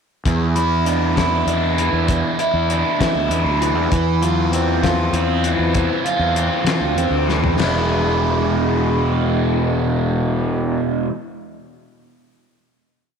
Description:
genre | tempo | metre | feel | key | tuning
psychedelic rock | 66 BPM (dotted quarters) | 6/8 | straight | E phrygian dominant | A4 = 440 Hz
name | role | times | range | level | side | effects
overdriven electric guitar | riff | 0.3-11.1 s | E2 to F4 | -18 LUFS | right 1 dB | phaser
fuzz fingered electric bass | bass | 0.3-10.8 s | E1 to E3 | -20 LUFS | equal | overdrive
cloth-damped thuddy drum kit | drums | 0.3-7.7 s | crash cymbal, hi-hat, kick drum, snare drum, toms | -24 LUFS | left 4 dB | none
room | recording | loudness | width
moderate echo chamber reverb, RT60 2.2 s | 1960s-style stereo | -16 LUFS | side -6 dB against mid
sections
0.3-7.6 groove; 7.6-11.2 final chord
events
drum fill 7.3-7.6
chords
0.3 Dsus2; 3.9 F5/E; 7.6 E7

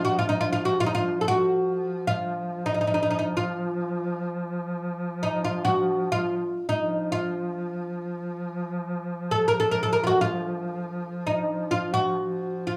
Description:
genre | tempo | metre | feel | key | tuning
Turkish makam ensemble | free time | none | none | F makam hicaz | A4 = 440 Hz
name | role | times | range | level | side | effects
oud | melody | 0.0-12.8 s | Eb4 to Bb4 | -27 LUFS | equal | none
warm duduk | drone | 0.0-12.8 s | F3 | -34 LUFS | equal | none
room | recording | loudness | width
moderate large studio reverb, RT60 0.9 s | band playing live in one room, small room ambience | -26 LUFS | mono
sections
0.0-12.8 A section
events
none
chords
none

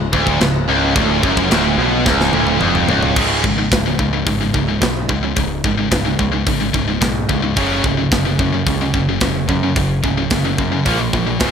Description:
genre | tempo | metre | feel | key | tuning
heavy metal | 109 BPM | 4/4 | straight | unclear | A4 = 438 Hz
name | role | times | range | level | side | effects
pipe organ, foundations | sustained chords | 0.0-3.1 s | C#3 to E#4 | -29 LUFS | equal | none
distorted electric guitar | riff | 0.0-11.5 s | C#2 to A#3 | -20 LUFS | right 9 dB | overdrive
heavy high-gain guitar | riff | 0.0-11.5 s | C#2 to A#3 | -19 LUFS | left 10 dB | distortion
high-gain distorted guitar | riff | 0.0-3.2 s | C#2 to B2 | -22 LUFS | right 1 dB | distortion
growling picked electric bass | bass | 0.0-11.5 s | C#1 to F#2 | -22 LUFS | equal | overdrive
tight metal drum kit | drums | 0.1-11.5 s | china cymbal, crash cymbal, hi-hat, kick drum, snare drum, toms | -20 LUFS | equal | none
room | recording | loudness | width
moderate plate reverb, RT60 1.4 s, small room ambience | bright 1980s-style digital production | -14 LUFS | side -7 dB against mid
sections
0.0-3.2 A section; 3.2-11.5 B section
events
drum fill 2.1-3.2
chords
0.0 C#; 3.2 C#5; 7.6 F#5; 10.9 A#5

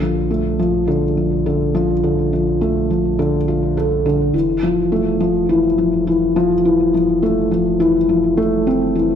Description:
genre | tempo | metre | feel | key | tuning
piano and strings electronica | 104 BPM | 4/4 | straight | F major | A4 = 440 Hz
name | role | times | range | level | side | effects
felt-muted upright piano | riff | 0.0-9.2 s | D3 to A4 | -15 LUFS | left 1 dB | ping-pong delay
warm sub bass | bass | 0.0-9.2 s | F1 to Bb1 | -26 LUFS | equal | none
room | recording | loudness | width
moderate echo chamber reverb, RT60 1.5 s, small room ambience | none | -14 LUFS | side -8 dB against mid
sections
0.0-4.3 A section; 4.3-9.2 B section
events
build-up 4.3-9.2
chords
0.0 Bbmaj7; 4.3 Fmaj7

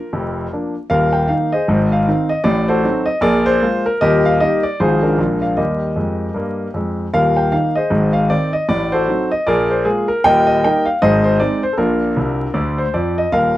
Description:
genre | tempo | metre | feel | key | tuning
jazz, stride piano | 154 BPM | 4/4 | swing 60% on 8ths | Eb major | A4 = 439 Hz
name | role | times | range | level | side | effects
warm grand piano | solo | 0.0-13.6 s | Eb1 to G5 | -14 LUFS | equal | none
room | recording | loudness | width
light reverb | dark, warm production, vinyl crackle | -14 LUFS | side -15 dB against mid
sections
0.0-7.1 A section; 7.1-13.6 A section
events
grand piano fill 12.2-13.3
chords
0.0 Bb; 0.9 Eb5; 1.7 Ab; 2.5 Adim7; 3.2 Bb5; 4.0 Eb; 4.8 Ab6; 5.2 Bb7; 5.6 Eb; 7.1 Eb5; 7.9 Ab; 8.7 Adim7; 9.5 Bb5; 10.2 Eb; 11.0 Ab; 11.8 Bb

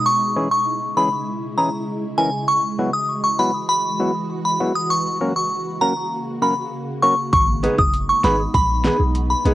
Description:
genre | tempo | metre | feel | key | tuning
dancehall | 99 BPM | 4/4 | straight | G# minor | A4 = 440 Hz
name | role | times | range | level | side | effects
glassy synth bell | melody | 0.0-9.4 s | G#5 to D#6 | -19 LUFS | equal | chorus, phaser, analog delay
ethereal airy pad | sustained chords | 0.0-9.5 s | C#3 to F#4 | -28 LUFS | right 1 dB | ensemble chorus, built-in reverb, sidechain pumping, cassette tape
percussive organ stab | accompaniment | 0.4-9.5 s | E3 to B4 | -21 LUFS | left 2 dB | chorus, cassette tape
warm 808-style bass | bass | 7.3-9.5 s | F#1 to B1 | -21 LUFS | equal | none
pop drum kit | drums | 7.3-9.5 s | hi-hat, kick drum, snare drum | -21 LUFS | equal | cassette tape
nylon-string guitar | arpeggios | 7.6-9.5 s | B3 to G#4 | -22 LUFS | right 3 dB | cassette tape
room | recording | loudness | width
light reverb | home recording on cassette | -17 LUFS | side -15 dB against mid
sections
0.0-9.5 A section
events
none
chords
0.1 C#m; 2.5 Eadd9; 4.9 F#; 7.3 G#m

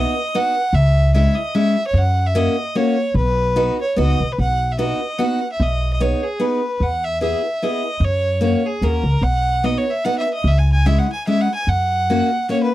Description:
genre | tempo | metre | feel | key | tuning
alpine folk, alpine dance band | 148 BPM | 3/4 | swing 54% on 8ths | B major | A4 = 440 Hz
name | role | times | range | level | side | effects
bright fiddle | melody | 0.0-12.7 s | G#4 to G#5 | -21 LUFS | right 1 dB | none
picked steel-string acoustic guitar | accompaniment | 0.0-12.7 s | G#3 to G#4 | -20 LUFS | left 1 dB | none
upright bass | bass | 0.0-12.2 s | B1 to F#2 | -18 LUFS | equal | none
room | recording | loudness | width
little or no reverb | dry, close 1970s-style studio recording | -16 LUFS | side -15 dB against mid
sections
0.0-4.4 A section; 4.4-12.7 A section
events
none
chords
0.0 B; 0.7 C#m; 2.0 F#; 3.2 B; 5.6 G#m/B; 6.8 E; 8.0 F#; 9.2 B; 10.5 C#m; 11.7 F#

